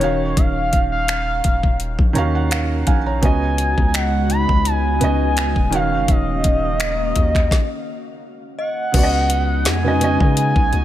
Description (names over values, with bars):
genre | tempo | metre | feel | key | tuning
contemporary R&B | 84 BPM | 4/4 | swing 54% on 16ths | Eb minor | A4 = 441 Hz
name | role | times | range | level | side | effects
gliding portamento lead | melody | 0.0-10.8 s | Db5 to Cb6 | -22 LUFS | equal | chorus, digital delay
felt-muted upright piano | accompaniment | 0.0-10.8 s | Db3 to Bb5 | -23 LUFS | right 4 dB | none
long sustained 808-style bass | bass | 0.0-10.8 s | Eb1 to Db3 | -21 LUFS | equal | none
smooth R&B drum kit | drums | 0.0-10.8 s | crash cymbal, finger snaps, hi-hat, kick drum, snare drum | -19 LUFS | equal | none
glassy FM pad | sustained chords | 3.7-10.8 s | Db3 to F5 | -26 LUFS | left 1 dB | ensemble chorus, built-in reverb, sidechain pumping
synth chime | texture | 3.9-10.8 s | Eb5 to Gb5 | -32 LUFS | equal | ensemble chorus, digital delay
room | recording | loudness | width
little or no reverb | none | -15 LUFS | side -12 dB against mid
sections
0.0-8.9 A section; 8.9-10.8 B section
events
felt piano fill 1.8-3.2; stop 7.5-8.9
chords
0.0 Ebm9; 3.2 Db9sus4; 5.7 Ebm9; 8.9 Db9sus4